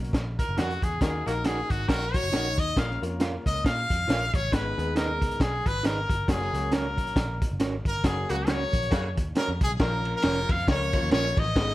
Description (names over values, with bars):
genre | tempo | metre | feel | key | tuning
uptempo 1960s-style soul | 136 BPM | 4/4 | swing 58% on 8ths | unclear | A4 = 440 Hz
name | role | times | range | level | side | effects
warm concert grand piano | accompaniment | 0.0-11.7 s | E#3 to C#5 | -34 LUFS | left 3 dB | none
vintage muted picked electric bass | bass | 0.0-11.7 s | E#1 to A#2 | -31 LUFS | equal | none
crunchy breakbeat drum kit | drums | 0.0-11.7 s | hi-hat, kick drum, ride cymbal, snare drum | -27 LUFS | equal | none
bright trumpet | melody | 0.4-11.7 s | F#4 to E#5 | -29 LUFS | left 1 dB | slapback echo
mellow electric guitar | stabs | 0.6-11.3 s | C#4 to F#5 | -31 LUFS | right 4 dB | none
warm horn section | second line | 1.3-2.0, 8.3-9.1 s | C#3 to F#4 | -34 LUFS | right 1 dB | none
hollow-body jazz guitar | riff | 1.9-2.7 s | D#4 to A#4 | -35 LUFS | left 5 dB | none
room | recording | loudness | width
light reverb | none | -24 LUFS | side -16 dB against mid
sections
0.0-9.8 A section; 9.8-11.7 B section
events
trumpet solo 0.0-9.8; band accent 1.0-2.8, 8.0-9.8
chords
0.0 F#; 1.0 D#m; 2.8 A#m; 4.5 G#m; 6.3 F#; 9.8 A#m